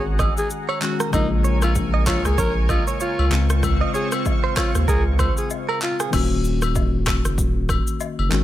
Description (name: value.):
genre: afrobeats.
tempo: 96 BPM.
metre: 4/4.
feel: swing 58% on 16ths.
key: Eb dorian.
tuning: A4 = 436 Hz.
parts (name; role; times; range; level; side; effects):
breathy alto saxophone; melody; 0.0-6.0 s; Eb4 to Bb4; -27 LUFS; equal; ping-pong delay.
tine electric piano; accompaniment; 0.0-8.4 s; Db3 to Gb4; -27 LUFS; left 7 dB; none.
lush unison pad; sustained chords; 0.0-6.1 s; C4 to Db6; -32 LUFS; right 2 dB; chorus.
saturated sub bass; bass; 0.0-8.4 s; Eb1 to Eb2; -21 LUFS; equal; none.
direct-recorded clean electric guitar; riff; 0.2-6.1 s; Ab4 to Eb5; -28 LUFS; right 7 dB; spring reverb, ping-pong delay.
deep house drum kit; drums; 0.2-8.4 s; crash cymbal, handclaps, kick drum, rim click, shaker; -23 LUFS; equal; none.
agogo bells and woodblock; percussion; 0.2-8.3 s; none; -31 LUFS; left 8 dB; none.
room: little or no reverb.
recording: none.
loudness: -18 LUFS.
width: side -13 dB against mid.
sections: 0.0-6.1 A section; 6.1-8.4 B section.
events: none.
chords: 0.0 Ab7sus4; 1.1 Bbm7; 3.3 Dbmaj7; 6.1 Ebm7.